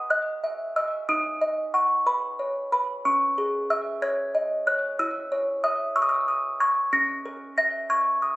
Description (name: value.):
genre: classical, lullaby for music box.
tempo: 62 BPM (dotted quarters).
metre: 6/8.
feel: straight.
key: unclear.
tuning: A4 = 440 Hz.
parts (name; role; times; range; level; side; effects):
music box; solo; 0.0-8.4 s; C#4 to A#6; -22 LUFS; equal; slapback echo.
room: light reverb.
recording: recorded on a phone in the room, club reverb.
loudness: -22 LUFS.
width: side -20 dB against mid.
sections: 0.0-8.4 A section.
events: none.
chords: 0.0 B; 1.1 B/D#; 3.0 C#m; 5.0 C#m/E; 6.9 A#dim/C#.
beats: 0.10 | 1.08 2.06 | 3.04 4.02 | 4.99 5.96 | 6.93 7.90.